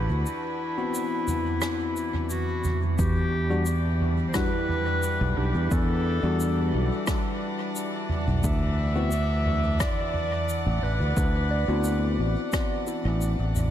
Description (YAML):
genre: ambient dub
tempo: 88 BPM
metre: 4/4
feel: straight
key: E minor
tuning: A4 = 440 Hz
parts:
  - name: clear clarinet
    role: melody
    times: 0.0-12.2 s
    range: E4 to E5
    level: -31 LUFS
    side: equal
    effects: dub echo
  - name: rich chamber string section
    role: sustained chords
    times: 0.0-13.7 s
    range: E3 to F#5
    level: -34 LUFS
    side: equal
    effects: none
  - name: fingered electric bass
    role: bass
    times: 0.0-13.7 s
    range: A1 to E2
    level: -24 LUFS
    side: equal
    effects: tube saturation
  - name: soft-mallet drum kit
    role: drums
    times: 0.3-13.7 s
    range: rim click, shaker, toms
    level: -30 LUFS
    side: right 1 dB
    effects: dub echo
  - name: tine electric piano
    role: stabs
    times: 0.8-13.7 s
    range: G3 to F#4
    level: -32 LUFS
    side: left 5 dB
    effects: dub echo
  - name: electronic kick drum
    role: drums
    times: 3.0-12.7 s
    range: none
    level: -28 LUFS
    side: equal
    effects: overdrive
  - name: soft synth bell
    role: arpeggios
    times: 4.3-13.7 s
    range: D4 to D5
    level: -36 LUFS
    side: right 2 dB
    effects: chorus, phaser, tape echo
room: light reverb, small room ambience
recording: none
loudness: -23 LUFS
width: side -11 dB against mid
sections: 0.0-3.0 A section; 3.0-13.7 B section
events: break 0.3-3.0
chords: 0.0 D13; 3.0 Em9; 8.4 D13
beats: | 0.26 0.94 1.62 2.31 | 2.99 3.67 4.35 5.03 | 5.71 6.40 7.08 7.76 | 8.44 9.12 9.80 10.49 | 11.17 11.85 12.53 13.21